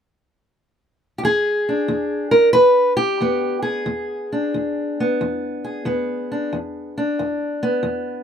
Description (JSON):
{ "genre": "acoustic country blues, solo or duo", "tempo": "91 BPM", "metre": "4/4", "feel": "swing 67% on 8ths", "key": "E mixolydian", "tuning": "A4 = 440 Hz", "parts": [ { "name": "fingerpicked steel-string acoustic guitar", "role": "solo", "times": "1.2-8.2 s", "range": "E2 to B4", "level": "-18 LUFS", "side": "equal", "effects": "none" } ], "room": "light reverb", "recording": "none", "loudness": "-18 LUFS", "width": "side -8 dB against mid", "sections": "0.0-1.2 A section; 1.2-8.2 B section", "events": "none", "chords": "0.0 N.C.; 1.2 E7", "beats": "0.56 | 1.23 1.89 2.56 3.22 | 3.88 4.54 5.20 5.87 | 6.53 7.19 7.85" }